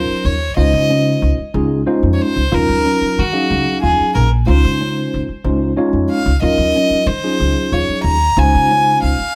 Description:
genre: jazz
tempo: 62 BPM (dotted quarters)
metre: 6/8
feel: straight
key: Eb dorian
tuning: A4 = 441 Hz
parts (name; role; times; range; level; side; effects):
- clear violin; melody; 0.0-9.3 s; Gb4 to Bb5; -19 LUFS; equal; tape echo
- tine electric piano; accompaniment; 0.0-9.2 s; Gb3 to F5; -21 LUFS; equal; none
- clean electric guitar; stabs; 0.0-8.9 s; Db4 to F4; -26 LUFS; equal; none
- upright bass; bass; 0.0-9.2 s; Bb1 to Eb3; -19 LUFS; equal; none
room: moderate small room ambience, RT60 0.5 s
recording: band playing live in one room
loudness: -15 LUFS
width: mono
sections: 0.0-9.3 A section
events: none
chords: 0.0 Ebm9; 0.6 Dbmaj9; 2.5 Ebm9; 4.5 Dbmaj9; 6.4 Ebm9; 8.4 Dbmaj9

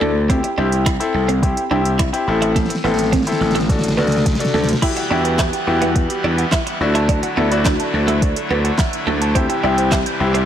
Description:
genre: dance-pop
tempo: 106 BPM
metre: 4/4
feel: straight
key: E minor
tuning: A4 = 440 Hz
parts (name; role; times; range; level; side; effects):
- clear grand piano; accompaniment; 0.0-10.5 s; C4 to A4; -21 LUFS; left 4 dB; sidechain pumping
- twelve-string electric guitar; riff; 0.0-10.4 s; A3 to E4; -24 LUFS; right 4 dB; lush chorus
- gritty slap bass; bass; 0.0-10.5 s; A1 to E2; -20 LUFS; equal; overdrive, sidechain pumping
- smooth R&B drum kit; drums; 0.3-10.5 s; crash cymbal, finger snaps, handclaps, hi-hat, kick drum, snare drum; -20 LUFS; equal; overdrive
- pipe organ, trumpet; sustained chords; 4.8-10.5 s; C3 to F#5; -24 LUFS; left 1 dB; sidechain pumping
- hollow square pluck; arpeggios; 4.8-10.5 s; G4 to G6; -26 LUFS; right 7 dB; chorus, sidechain pumping, ping-pong delay
room: light reverb, digital ambience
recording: blown-out, overdriven recording, overdrive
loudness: -15 LUFS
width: side -10 dB against mid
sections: 0.0-4.8 A section; 4.8-10.5 B section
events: drum fill 2.6-4.8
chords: 0.3 C; 2.3 Am; 3.7 D; 4.8 Emadd9; 6.8 Dadd9; 9.4 C

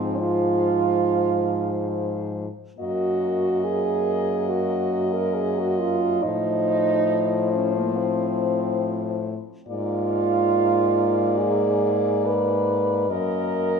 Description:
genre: classical, lyrical piece for horn quartet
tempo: free time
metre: none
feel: none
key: unclear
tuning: A4 = 440 Hz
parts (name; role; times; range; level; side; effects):
- warm French horn; melody; 0.0-13.8 s; C5 to Eb5; -28 LUFS; left 6 dB; none
- warm French horn; second line; 0.0-13.8 s; Bb3 to Cb5; -23 LUFS; right 4 dB; none
- clear French horn; accompaniment; 0.0-13.8 s; F3 to Bb3; -30 LUFS; left 4 dB; none
- warm French horn; bass; 0.0-13.8 s; Gb2 to A2; -27 LUFS; left 1 dB; none
room: moderate recital hall reverb, RT60 1.6 s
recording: minimal, uncompressed stereo recording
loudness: -20 LUFS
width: side -6 dB against mid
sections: 0.0-13.8 A section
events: none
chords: 0.0 Fm/Ab; 2.8 Ebm/Gb; 6.2 F7/A; 9.7 Bb7/Ab; 13.1 Ebm/Gb

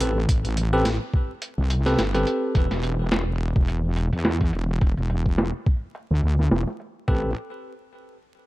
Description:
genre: glitch hop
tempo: 106 BPM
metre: 4/4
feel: swing 56% on 16ths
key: A minor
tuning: A4 = 440 Hz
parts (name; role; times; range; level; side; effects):
- bell-like tine electric piano; stabs; 0.0-2.5, 7.1-7.3 s; C4 to B4; -26 LUFS; equal; sidechain pumping, digital delay
- wobble bass; bass; 0.0-7.3 s; E1 to E2; -23 LUFS; equal; chorus, tube saturation
- boom bap sampler-style drum kit; drums; 0.0-6.9 s; hi-hat, snare drum; -26 LUFS; equal; overdrive, low-pass filter on hats, low-pass filter on snare, low-pass filter on room
- electronic kick drum; drums; 0.3-7.2 s; none; -21 LUFS; equal; none
room: little or no reverb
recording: vinyl crackle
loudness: -21 LUFS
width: side -18 dB against mid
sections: 0.0-7.1 A section; 7.1-8.5 B section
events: filter sweep on drum 0.0-7.1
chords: 0.0 Am9; 2.6 N.C.; 7.1 Am9

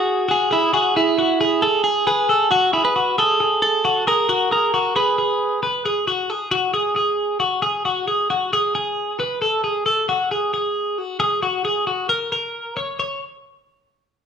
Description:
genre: indie pop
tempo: 134 BPM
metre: 4/4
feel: straight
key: unclear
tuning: A4 = 440 Hz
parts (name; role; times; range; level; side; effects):
- clean electric guitar; melody; 0.0-5.6 s; E4 to B4; -18 LUFS; right 2 dB; none
- twelve-string electric guitar; arpeggios; 0.0-13.2 s; F#4 to C#5; -19 LUFS; left 1 dB; none
room: moderate large studio reverb, RT60 1.2 s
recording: band playing live in one room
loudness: -17 LUFS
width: side -7 dB against mid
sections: 0.0-5.8 A section; 5.8-13.0 B section; 13.0-14.3 C section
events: none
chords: 0.0 Eadd9 (rootless); 0.5 E; 2.3 Eadd11 (rootless); 4.1 F#; 5.0 G#m; 5.8 F#sus2; 7.6 F#sus24; 9.4 F#madd9; 11.2 F#; 13.0 N.C.

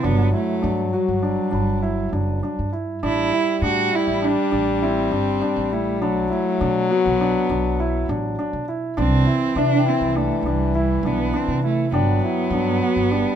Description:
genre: contemporary instrumental, chamber music in an uneven meter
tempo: 101 BPM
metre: 5/4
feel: straight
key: unclear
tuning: A4 = 440 Hz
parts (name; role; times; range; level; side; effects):
- dark cello; melody; 0.0-13.4 s; G3 to F#4; -24 LUFS; right 6 dB; none
- warm French horn; second line; 0.0-13.4 s; E3 to G3; -24 LUFS; left 6 dB; none
- dark baby grand piano; arpeggios; 0.0-13.4 s; D4 to F#4; -25 LUFS; equal; none
- upright bass; bass; 0.0-13.2 s; F#1 to C3; -24 LUFS; right 1 dB; none
- celesta; texture; 1.5-13.4 s; E5 to B5; -29 LUFS; left 10 dB; none
room: light reverb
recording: close, detailed microphones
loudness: -18 LUFS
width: side -9 dB against mid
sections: 0.0-13.4 A section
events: none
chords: 0.0 Gmaj7; 3.0 Am7; 6.0 Bm7; 9.0 C; 11.9 Gmaj7

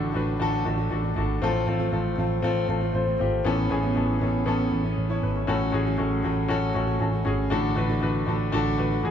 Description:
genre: pop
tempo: 118 BPM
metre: 4/4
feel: straight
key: unclear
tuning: A4 = 440 Hz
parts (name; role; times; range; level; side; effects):
- clear upright piano; accompaniment; 0.0-9.1 s; A2 to C#5; -26 LUFS; left 3 dB; none
- fingerpicked plugged-in steel-string acoustic guitar; riff; 0.0-9.1 s; A2 to F#4; -31 LUFS; right 7 dB; none
- vintage muted picked electric bass; bass; 0.0-9.1 s; G#1 to A1; -27 LUFS; right 1 dB; none
room: wet large studio reverb, RT60 1.3 s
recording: band playing live in one room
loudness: -22 LUFS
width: side -8 dB against mid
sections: 0.0-9.1 A section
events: none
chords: 0.0 D/A; 1.4 F/A; 3.5 Aadd9; 5.5 F#m/A; 7.5 D/A

